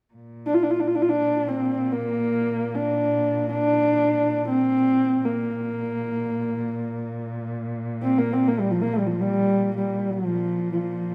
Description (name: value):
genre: mongolian traditional, Mongolian folk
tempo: free time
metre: none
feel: none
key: Bb gong mode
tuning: A4 = 439 Hz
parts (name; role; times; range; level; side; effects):
- warm cello; drone; 0.1-11.1 s; Bb2; -34 LUFS; equal; none
- dark horsehead fiddle; melody; 0.5-11.1 s; F3 to F4; -24 LUFS; equal; none
room: wet recital hall reverb, RT60 1.6 s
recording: none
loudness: -24 LUFS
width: mono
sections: 0.1-11.1 A section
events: none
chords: none